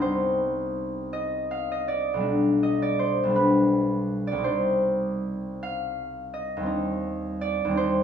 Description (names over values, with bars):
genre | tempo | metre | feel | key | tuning
classical, solo harp piece | 54 BPM (dotted quarters) | 6/8 | uneven beats, rubato | C minor | A4 = 440 Hz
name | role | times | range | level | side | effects
concert harp | solo | 0.0-8.0 s | B1 to F5 | -23 LUFS | equal | none
room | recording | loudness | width
moderate recital hall reverb, RT60 1.4 s | recorded in a church or concert hall, small room ambience | -23 LUFS | side -8 dB against mid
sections
0.0-8.0 A section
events
none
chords
0.0 Cm; 2.3 G/B; 4.4 Cm; 6.7 Cm/Eb